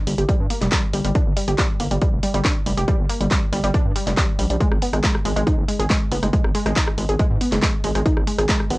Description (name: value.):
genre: driving peak-time techno.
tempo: 139 BPM.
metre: 4/4.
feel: straight.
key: G phrygian.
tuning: A4 = 440 Hz.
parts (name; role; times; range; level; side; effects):
wide unison pluck; riff; 0.1-8.8 s; G3 to Ab4; -24 LUFS; equal; sidechain pumping, cassette tape, analog delay.
gritty driven synth bass; bass; 0.1-8.8 s; F1 to Ab2; -23 LUFS; equal; sidechain pumping.
punchy analog drum machine; drums; 0.1-8.8 s; handclaps, hi-hat, rim click; -26 LUFS; equal; sidechain pumping on hats, cassette tape, sidechain pumping on cymbals.
electronic kick drum; drums; 0.3-8.6 s; none; -21 LUFS; equal; cassette tape.
room: light reverb.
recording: home recording on cassette.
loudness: -18 LUFS.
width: side -20 dB against mid.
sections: 0.0-8.8 A section.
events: none.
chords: 0.0 Gm; 4.6 N.C..